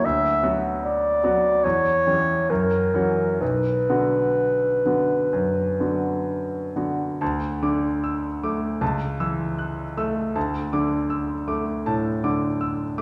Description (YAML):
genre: classical, romantic duo for clarinet and grand piano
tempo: 60-81 BPM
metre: 4/4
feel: rubato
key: B minor, D major from 7.2 s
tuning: A4 = 440 Hz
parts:
  - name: mellow clarinet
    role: melody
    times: 0.0-6.7 s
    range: A#4 to E5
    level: -24 LUFS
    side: equal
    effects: none
  - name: bright grand piano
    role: accompaniment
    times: 0.0-13.0 s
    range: B1 to F#6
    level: -26 LUFS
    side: equal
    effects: none
room: wet recital hall reverb, RT60 1.7 s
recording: heard from further back in the room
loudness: -23 LUFS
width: mono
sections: 0.0-7.2 A section; 7.2-13.0 B section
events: none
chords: 0.0 Bm/D; 1.6 C#dim/E; 2.5 F#7; 3.4 Bm; 7.2 D5; 8.8 A/C#; 10.4 D5